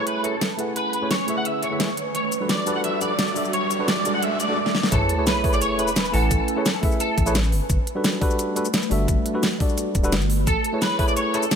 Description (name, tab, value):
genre	liquid drum and bass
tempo	173 BPM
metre	4/4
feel	straight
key	A major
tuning	A4 = 440 Hz
part	electric guitar at the edge of break-up	melody	0.0-7.3, 10.5-11.6 s	A4 to F#5	-25 LUFS	equal	ensemble chorus, dub echo
part	tine electric piano	accompaniment	0.0-11.4 s	G3 to G#5	-26 LUFS	equal	low-pass filter, dub echo
part	glassy FM pad	sustained chords	0.0-11.6 s	G3 to G#5	-31 LUFS	right 2 dB	ensemble chorus, built-in reverb, phaser, sidechain pumping
part	riser and sub drop	sound effects	1.5-6.3 s	none	-30 LUFS	right 1 dB	none
part	pop drum kit	drums	0.1-11.6 s	hi-hat, shaker, snare drum	-25 LUFS	equal	none
part	saturated sub bass	bass	4.9-10.6 s	D1 to A1	-23 LUFS	equal	none
part	electronic kick drum	drums	4.9-11.1 s	none	-23 LUFS	equal	none
room	light reverb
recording	none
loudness	-20 LUFS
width	side -7 dB against mid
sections	0.0-4.9 A section; 4.9-11.6 B section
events	build-up 0.0-4.9; riser 1.5-4.6; drum fill 4.7; drop 4.9-11.6; impact 4.9-6.3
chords	0.0 Amaj9; 2.0 Gmaj9; 4.9 Amaj9; 7.5 Gmaj9; 10.5 Amaj9